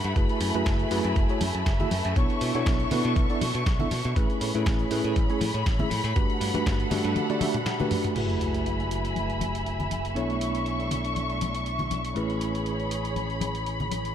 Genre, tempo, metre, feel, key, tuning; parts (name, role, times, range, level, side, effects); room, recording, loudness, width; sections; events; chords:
nu-disco, nu disco; 120 BPM; 4/4; swing 54% on 16ths; F# minor; A4 = 439 Hz
dark studio string section; sustained chords; 0.0-14.1 s; A3 to C#6; -31 LUFS; left 1 dB; sidechain pumping, low-pass filter
modern bright picked electric bass; bass; 0.0-14.1 s; F#1 to B2; -30 LUFS; equal
dusty soul sampler-style drum kit; drums; 0.0-14.1 s; crash cymbal, hi-hat, snare drum, toms; -36 LUFS; right 1 dB
mellow tine electric piano; accompaniment; 0.2-14.1 s; A3 to E5; -29 LUFS; right 1 dB; medium stereo tremolo, sidechain pumping, low-pass filter, tape echo
electronic kick drum; drums; 0.2-6.8 s; -25 LUFS; equal
congas; percussion; 1.2-14.0 s; -35 LUFS; left 3 dB
sub drop; sound effects; 8.2-10.2 s; -34 LUFS; equal
moderate huge ambient reverb, RT60 8.8 s; dreamy mix soaked in reverb; -24 LUFS; side -9 dB against mid
0.0-8.2 A section; 8.2-14.1 B section
drum fill 7.2-8.2; impact 8.2-10.2; filter sweep on tine electric piano 8.2-14.1
0.2 F#m11; 2.2 Bm11; 4.2 Amaj9; 6.2 Gmaj9; 8.2 F#m11; 10.2 Bm11; 12.2 Amaj9